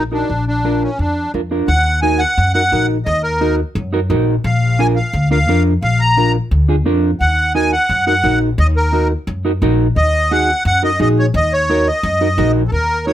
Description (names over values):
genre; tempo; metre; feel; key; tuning
latin; 174 BPM; 4/4; straight; Eb harmonic minor; A4 = 440 Hz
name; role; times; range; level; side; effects
accordion; melody; 0.0-13.1 s; Db4 to Bb5; -16 LUFS; equal; light tremolo tuning
upright bass; bass; 0.0-13.1 s; Bb1 to Gb2; -17 LUFS; left 1 dB; none
mellow electric guitar; accompaniment; 0.1-13.1 s; D4 to Bb4; -17 LUFS; right 2 dB; wide subtle chorus
room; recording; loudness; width
light reverb; close, detailed microphones; -13 LUFS; side -12 dB against mid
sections
0.0-1.7 A section; 1.7-12.7 B section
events
none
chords
0.3 Bb; 1.7 Ebm; 4.4 Bb; 7.2 Ebm